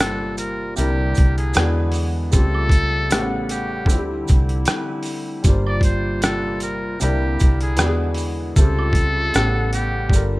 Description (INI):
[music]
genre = lo-fi hip hop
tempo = 77 BPM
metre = 4/4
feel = swing 55% on 16ths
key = unclear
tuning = A4 = 438 Hz
[part]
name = trumpet with metal mute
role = melody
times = 0.0-10.3 s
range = G4 to D5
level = -26 LUFS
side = left 1 dB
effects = low-pass filter, tape echo
[part]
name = felt-muted upright piano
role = accompaniment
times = 0.0-10.4 s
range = A2 to F#5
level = -26 LUFS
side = left 1 dB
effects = cassette tape, low-pass filter
[part]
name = mellow woodwind section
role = sustained chords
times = 0.0-10.4 s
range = C3 to F#5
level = -28 LUFS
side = equal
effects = low-pass filter
[part]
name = vintage muted fingered electric bass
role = bass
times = 0.0-10.4 s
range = G1 to E2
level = -22 LUFS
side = equal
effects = none
[part]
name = trip hop sampler-style drum kit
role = drums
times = 0.0-10.3 s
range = hi-hat, kick drum, rim click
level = -18 LUFS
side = equal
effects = none
[part]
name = maracas and woodblock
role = percussion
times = 0.4-10.3 s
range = none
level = -32 LUFS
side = right 7 dB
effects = none
[sound]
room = small room ambience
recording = rough home demo mix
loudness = -17 LUFS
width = side -20 dB against mid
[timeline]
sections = 0.0-10.4 A section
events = none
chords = 0.0 Gm7; 0.8 C9; 1.5 E7; 2.3 A7alt/C#; 3.1 A13; 3.9 D9sus4; 5.4 Gm7; 7.0 C9; 7.8 E7; 8.6 A7alt/C#; 9.3 A13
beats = 0.77 1.55 | 2.33 3.11 3.89 4.67 | 5.45 6.22 7.00 7.78 | 8.56 9.34 10.12